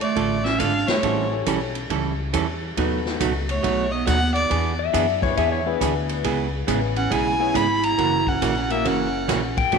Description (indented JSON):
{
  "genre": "country, western swing",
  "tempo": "138 BPM",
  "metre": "4/4",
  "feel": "swing 65% on 8ths",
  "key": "unclear",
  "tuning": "A4 = 437 Hz",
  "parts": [
    { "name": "clear fiddle", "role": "melody", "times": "0.0-9.6 s", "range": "C#5 to B5", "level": "-25 LUFS", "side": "left 1 dB", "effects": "none" },
    { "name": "growling clarinet", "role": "second line", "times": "0.0-9.6 s", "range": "A3 to E4", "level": "-27 LUFS", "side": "right 7 dB", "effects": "none" },
    { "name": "upright bass", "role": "bass", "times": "0.0-9.8 s", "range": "F#1 to F#2", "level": "-27 LUFS", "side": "left 1 dB", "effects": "none" },
    { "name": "swinging big-band drum kit", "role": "drums", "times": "0.0-9.8 s", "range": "hi-hat, kick drum, ride cymbal, snare drum", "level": "-29 LUFS", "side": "left 1 dB", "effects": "none" },
    { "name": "archtop guitar, miked and amplified", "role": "accompaniment", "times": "0.2-9.8 s", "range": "B2 to A4", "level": "-25 LUFS", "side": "right 8 dB", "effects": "none" },
    { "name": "clear upright piano", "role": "accompaniment", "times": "1.0-9.8 s", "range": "A3 to C#5", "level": "-30 LUFS", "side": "left 13 dB", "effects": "none" },
    { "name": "pedal steel guitar", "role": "second line", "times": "4.8-6.5, 9.6-9.8 s", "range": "B4 to G5", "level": "-24 LUFS", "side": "left 11 dB", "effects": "none" }
  ],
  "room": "moderate echo chamber reverb, RT60 2.1 s",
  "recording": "1960s-style stereo with parts hard left and right",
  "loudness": "-19 LUFS",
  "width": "side -5 dB against mid",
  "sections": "0.0-9.8 A section",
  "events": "none",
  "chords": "0.0 Dm; 1.0 A7; 2.8 B7; 4.5 E7; 6.2 C#m7; 8.0 F#7"
}